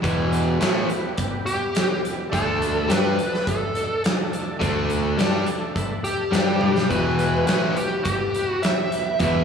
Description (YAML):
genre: blues rock power trio and southern rock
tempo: 105 BPM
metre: 4/4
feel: straight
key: E minor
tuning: A4 = 440 Hz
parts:
  - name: overdriven tonewheel organ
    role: sustained chords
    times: 0.0-9.4 s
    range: G3 to E5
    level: -32 LUFS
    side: right 2 dB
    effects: chorus vibrato, lush chorus
  - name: overdriven semi-hollow guitar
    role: riff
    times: 0.0-9.4 s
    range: E2 to G4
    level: -24 LUFS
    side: equal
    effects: slapback echo
  - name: picked electric bass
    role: bass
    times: 0.0-9.4 s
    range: E1 to G2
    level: -26 LUFS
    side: left 1 dB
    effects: none
  - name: huge arena drum kit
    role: drums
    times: 0.0-9.3 s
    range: hi-hat, kick drum, snare drum, toms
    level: -24 LUFS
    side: equal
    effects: none
  - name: dark smooth lead guitar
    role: melody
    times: 1.5-9.4 s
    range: G4 to E5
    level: -25 LUFS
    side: equal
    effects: overdrive, slapback echo
room: moderate lush hall reverb, RT60 2.3 s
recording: big arena sound, small room ambience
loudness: -20 LUFS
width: side -6 dB against mid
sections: 0.0-9.4 A section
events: drum fill 6.6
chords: 0.0 Em; 2.3 D5; 6.3 G5; 6.9 Em